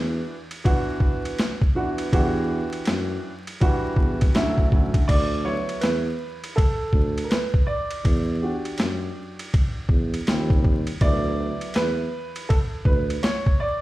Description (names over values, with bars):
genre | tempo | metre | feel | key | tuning
hip hop, jazz-hop | 81 BPM | 4/4 | swing 61% on 16ths | D major | A4 = 440 Hz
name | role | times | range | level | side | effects
dark grand piano | accompaniment | 0.0-13.8 s | D3 to D5 | -27 LUFS | right 2 dB | plate reverb
mellow tuba | bass | 0.0-13.2 s | D2 to F#2 | -26 LUFS | equal | none
boom bap sampler-style drum kit | drums | 0.5-13.6 s | crash cymbal, hi-hat, kick drum, ride cymbal, snare drum | -22 LUFS | equal | none
room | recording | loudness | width
little or no reverb | played on a big sound system in a bare room, large studio reverb, vinyl crackle | -20 LUFS | side -17 dB against mid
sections
0.0-5.1 A section; 5.1-13.8 A section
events
grand piano solo 5.1-13.8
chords
0.0 D69; 2.1 Em9; 4.3 Dmaj9; 5.1 D69; 8.0 Em9; 10.3 Eb69; 11.0 D69